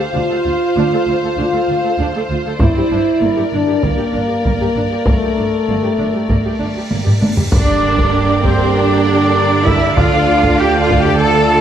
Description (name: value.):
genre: cinematic, epic orchestral film score.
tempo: 98 BPM.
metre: 4/4.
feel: straight.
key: unclear.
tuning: A4 = 440 Hz.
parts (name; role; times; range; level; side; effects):
dark symphonic violin section; melody; 0.0-11.6 s; C5 to A5; -27 LUFS; left 3 dB; none.
warm symphonic violin section; second line; 0.0-11.6 s; A4 to D5; -24 LUFS; left 2 dB; none.
warm symphonic viola section; accompaniment; 0.0-11.6 s; D3 to A4; -23 LUFS; right 3 dB; none.
clear symphonic cello section; bass; 0.0-11.6 s; D2 to A4; -20 LUFS; right 3 dB; none.
clear French horn section; sustained chords; 0.1-11.6 s; A3 to G4; -18 LUFS; left 1 dB; none.
dark studio double bass section; bass; 0.1-11.6 s; G1 to G2; -21 LUFS; right 4 dB; none.
taiko ensemble; drums; 2.6-11.5 s; none; -16 LUFS; equal; none.
cymbal swell and impact; sound effects; 6.6-10.0 s; none; -26 LUFS; equal; none.
warm symphonic string section; sustained chords; 7.5-11.6 s; D4 to G5; -24 LUFS; equal; none.
warm trombone section; sustained chords; 7.5-11.6 s; D3 to Bb3; -22 LUFS; right 4 dB; none.
clear trumpet section; stabs; 7.5-11.6 s; C5 to A5; -18 LUFS; right 1 dB; none.
timpani; percussion; 10.0-10.9 s; D3; -25 LUFS; left 2 dB; none.
room: moderate scoring stage reverb, RT60 1.4 s.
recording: none.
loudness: -12 LUFS.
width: side -9 dB against mid.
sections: 0.0-7.5 A section; 7.5-11.6 B section.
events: cymbal swell 6.6-7.5; drum fill 6.9-7.5; impact 7.5-10.0.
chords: 0.0 Dm7; 2.6 Gmadd9; 7.5 Gm; 10.0 Dm.